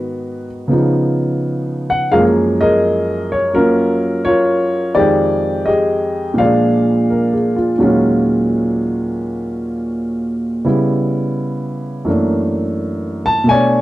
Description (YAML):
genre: solo jazz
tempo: 84 BPM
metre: 4/4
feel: swing 68% on 8ths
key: F# major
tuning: A4 = 440 Hz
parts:
  - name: dark upright piano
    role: solo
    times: 0.0-13.8 s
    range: D#2 to A5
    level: -14 LUFS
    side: equal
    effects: none
room: light reverb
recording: dry, close 1970s-style studio recording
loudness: -14 LUFS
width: side -16 dB against mid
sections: 0.0-2.1 A section; 2.1-13.8 B section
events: none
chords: 0.0 G#m7; 0.7 C#9; 2.1 F#maj9; 5.0 Fm9; 6.4 A#7; 7.8 D#m11; 10.6 C#m7b5; 12.1 F#7alt